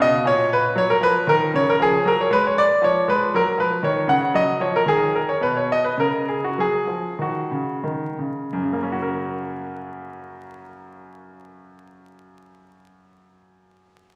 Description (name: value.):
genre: classical, baroque-style suite movement for grand piano.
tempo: 88-119 BPM.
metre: 3/4.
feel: rubato.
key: F# major.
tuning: A4 = 441 Hz.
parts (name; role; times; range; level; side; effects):
bright grand piano; solo; 0.0-14.2 s; F#2 to F#5; -21 LUFS; equal; none.
room: wet scoring stage reverb, RT60 1.9 s.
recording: vinyl crackle.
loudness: -21 LUFS.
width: mono.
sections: 0.0-8.5 A section; 8.5-12.6 B section.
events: slowing down 4.1-8.5.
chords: 0.3 F#/A#; 1.8 Fdim7; 3.3 F#5; 4.9 N.C.; 6.6 F#5; 8.5 F#.